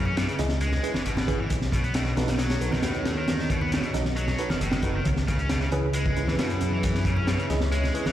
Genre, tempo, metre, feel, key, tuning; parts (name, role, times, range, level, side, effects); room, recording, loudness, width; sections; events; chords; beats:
breakbeat, breaks; 135 BPM; 4/4; straight; C# minor; A4 = 440 Hz
dark analog pad; sustained chords; 0.0-8.1 s; B3 to E5; -36 LUFS; equal; chorus, sidechain pumping
heavy high-gain guitar; riff; 0.0-8.1 s; A2 to C#4; -30 LUFS; left 1 dB; distortion, tape echo
bright tine electric piano; stabs; 0.0-8.0 s; C#4 to D#5; -33 LUFS; right 2 dB; medium stereo tremolo, tape echo
fat analog bass; bass; 0.0-8.1 s; F#1 to F#2; -28 LUFS; equal
congas; percussion; 0.1-8.1 s; -34 LUFS; right 2 dB
crunchy breakbeat drum kit; drums; 0.2-8.1 s; hi-hat, kick drum, snare drum; -28 LUFS; equal
light reverb, small room ambience; played on a big sound system in a bare room, large studio reverb; -23 LUFS; side -12 dB against mid
0.0-8.1 A section
0.0 C#m7; 1.5 B7; 5.1 C#m7
0.17 0.61 1.06 | 1.50 1.95 2.39 2.83 | 3.28 3.72 4.17 4.61 | 5.06 5.50 5.95 6.39 | 6.83 7.28 7.72